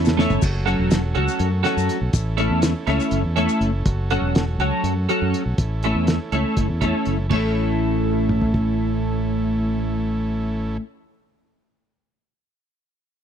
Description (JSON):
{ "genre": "psychedelic rock", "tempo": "243 BPM (eighths)", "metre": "7/8", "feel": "straight", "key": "A major", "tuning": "A4 = 440 Hz", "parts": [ { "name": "overdriven combo organ", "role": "sustained chords", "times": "0.0-10.8 s", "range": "E3 to A4", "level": "-32 LUFS", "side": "right 5 dB", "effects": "none" }, { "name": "twelve-string electric guitar", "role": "riff", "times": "0.0-10.8 s", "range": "F#3 to A4", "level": "-21 LUFS", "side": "equal", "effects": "flanger, double-tracked left and right" }, { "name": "fingered electric bass", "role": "bass", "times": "0.0-10.8 s", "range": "E1 to F#2", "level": "-23 LUFS", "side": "equal", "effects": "none" }, { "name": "cloth-damped thuddy drum kit", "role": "drums", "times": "0.1-8.7 s", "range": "crash cymbal, hi-hat, kick drum, snare drum, toms", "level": "-23 LUFS", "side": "equal", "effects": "none" }, { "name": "maracas", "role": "percussion", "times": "0.1-3.6 s", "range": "none", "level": "-37 LUFS", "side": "left 14 dB", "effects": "none" } ], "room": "little or no reverb", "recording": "dry, close 1970s-style studio recording", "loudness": "-19 LUFS", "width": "side -8 dB against mid", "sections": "0.4-7.3 A section; 7.3-10.8 B section", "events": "drum fill 0.0-0.4", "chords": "0.4 F#m; 2.1 A; 3.9 F#m; 5.6 A" }